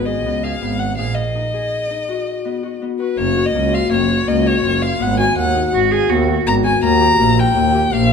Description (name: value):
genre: contemporary instrumental, chamber music in an uneven meter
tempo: 165 BPM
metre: 5/4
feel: straight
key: G# dorian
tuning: A4 = 437 Hz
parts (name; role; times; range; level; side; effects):
- rich violin; melody; 0.0-8.1 s; B4 to A#5; -19 LUFS; left 1 dB; none
- Celtic harp; arpeggios; 0.0-8.1 s; A#3 to G#4; -19 LUFS; left 8 dB; none
- rich double bass; bass; 0.0-8.1 s; F#1 to D#2; -20 LUFS; right 6 dB; none
- rich cello; second line; 5.7-6.4 s; F#4 to G#4; -20 LUFS; right 6 dB; none
room: moderate recital hall reverb, RT60 1.6 s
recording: minimal, uncompressed stereo recording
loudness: -14 LUFS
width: side -6 dB against mid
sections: 0.0-3.2 A section; 3.2-8.1 B section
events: break 1.4-3.2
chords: 0.0 C#9; 1.4 G#m7; 3.2 F#maj7; 5.0 G#m7; 6.8 D#add9